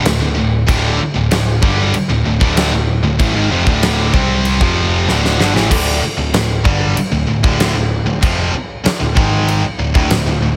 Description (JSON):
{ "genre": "hard rock", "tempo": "96 BPM", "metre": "4/4", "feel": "straight", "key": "D minor", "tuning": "A4 = 440 Hz", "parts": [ { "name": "high-gain distorted guitar", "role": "riff", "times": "0.0-10.6 s", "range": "D2 to C4", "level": "-21 LUFS", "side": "equal", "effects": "distortion" }, { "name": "high-gain distorted guitar", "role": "riff", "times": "0.0-5.7 s", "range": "D2 to C4", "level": "-23 LUFS", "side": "equal", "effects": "distortion" }, { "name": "overdriven picked electric bass", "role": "bass", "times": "0.0-10.6 s", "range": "D1 to C2", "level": "-20 LUFS", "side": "equal", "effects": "none" }, { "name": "huge arena drum kit", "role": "drums", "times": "0.1-10.3 s", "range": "crash cymbal, kick drum, snare drum", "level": "-20 LUFS", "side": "equal", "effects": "none" }, { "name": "high-gain distorted guitar", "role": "riff", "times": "0.7-10.6 s", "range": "D2 to C4", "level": "-24 LUFS", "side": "equal", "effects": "distortion" } ], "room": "little or no reverb", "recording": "none", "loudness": "-15 LUFS", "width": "mono", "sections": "0.0-5.7 A section; 5.7-10.6 A section", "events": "drum fill 5.1-5.7", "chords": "0.0 Dm" }